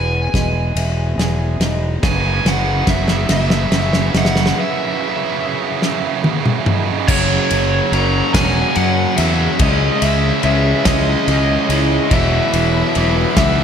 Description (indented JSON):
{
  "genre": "post-rock",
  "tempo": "48 BPM (dotted quarters)",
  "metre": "6/8",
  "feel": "straight",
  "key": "unclear",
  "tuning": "A4 = 440 Hz",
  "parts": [
    { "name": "overdriven electric guitar", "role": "melody", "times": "0.0-13.6 s", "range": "C#5 to A#5", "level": "-21 LUFS", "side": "left 1 dB", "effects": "tape echo" },
    { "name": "bright chamber string section", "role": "sustained chords", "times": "0.0-13.6 s", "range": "C#3 to B5", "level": "-29 LUFS", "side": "equal", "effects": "none" },
    { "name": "electric guitar through a small old amp", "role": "arpeggios", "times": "0.0-2.0 s", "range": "E2 to G#4", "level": "-29 LUFS", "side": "left 2 dB", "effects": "slapback echo, tape echo" },
    { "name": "vibraphone with soft mallets", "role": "arpeggios", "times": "0.0-13.6 s", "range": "E4 to D#6", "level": "-29 LUFS", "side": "right 4 dB", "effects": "slapback echo, tape echo" },
    { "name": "fuzz fingered electric bass", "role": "bass", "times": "0.0-13.6 s", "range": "E1 to F#2", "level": "-18 LUFS", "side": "equal", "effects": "overdrive" },
    { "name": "loose indie drum kit", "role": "drums", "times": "0.3-13.6 s", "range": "crash cymbal, kick drum, ride cymbal, snare drum, toms", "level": "-19 LUFS", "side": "equal", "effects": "none" },
    { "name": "tight distorted guitar", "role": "riff", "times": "2.0-13.6 s", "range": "E2 to C#4", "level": "-21 LUFS", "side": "right 9 dB", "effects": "distortion, slapback echo" },
    { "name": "fuzz guitar", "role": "riff", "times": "7.1-13.6 s", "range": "F#2 to F#4", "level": "-21 LUFS", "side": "left 8 dB", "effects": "distortion" }
  ],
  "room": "wet concert hall reverb, RT60 2.0 s, small room ambience",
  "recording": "big arena sound",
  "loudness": "-14 LUFS",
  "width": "side -8 dB against mid",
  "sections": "0.0-7.1 A section; 7.1-13.6 B section",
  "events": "build-up 0.0-7.1; drum fill 0.0-4.6, 5.8-7.1; break 4.6-7.1",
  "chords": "0.0 Emaj7; 2.0 F#7sus4; 7.1 F#; 9.6 C#madd9; 12.1 Esus2",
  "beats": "0.77 | 2.04 3.30 | 4.57 5.83 | 7.09 8.35 | 9.61 10.87 | 12.13 13.38"
}